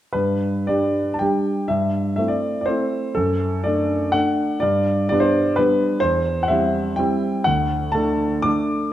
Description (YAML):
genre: classical, romantic triple-time dance for piano with dotted rhythms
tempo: 107-137 BPM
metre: 3/4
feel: rubato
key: G major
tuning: A4 = 444 Hz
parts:
  - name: clear concert grand piano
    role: solo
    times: 0.1-8.9 s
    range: D2 to D6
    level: -18 LUFS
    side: equal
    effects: none
room: wet recital hall reverb, RT60 1.5 s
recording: dark, warm production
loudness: -18 LUFS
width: side -12 dB against mid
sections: 0.1-8.9 A section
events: none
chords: 0.1 G; 1.7 Am7/G; 3.2 D/F#; 4.6 G; 6.0 C/E; 7.5 D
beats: | 0.15 0.69 1.22 | 1.70 2.19 2.68 | 3.16 3.65 4.14 | 4.62 5.10 5.57 | 6.02 6.49 6.99 | 7.46 7.95 8.46